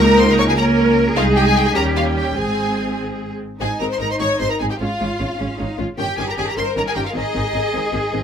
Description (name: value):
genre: quick classical-period movement for string orchestra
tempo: 102 BPM (dotted quarters)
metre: 6/8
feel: straight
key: Ab major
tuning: A4 = 440 Hz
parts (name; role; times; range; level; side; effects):
- rich studio violin section; melody; 0.0-8.1 s; Eb5 to Db6; -24 LUFS; left 2 dB; none
- warm studio violin section; second line; 0.0-8.1 s; Eb4 to Db5; -24 LUFS; left 2 dB; none
- rich studio viola section; accompaniment; 0.0-8.2 s; Eb3 to Eb4; -22 LUFS; right 1 dB; none
- warm studio cello section; bass; 0.0-8.2 s; Db4 to Bb4; -22 LUFS; equal; none
- warm studio double bass section; bass; 0.0-8.2 s; G1 to Eb2; -22 LUFS; right 1 dB; none
room: light reverb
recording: close, detailed microphones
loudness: -16 LUFS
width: side -8 dB against mid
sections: 0.0-3.6 A section; 3.6-8.2 B section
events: none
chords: 0.0 Eb5/Db; 1.2 Ab/C; 1.8 Eb7; 2.4 Ab; 4.8 Db/Ab; 6.0 Eb7/G; 7.2 Ab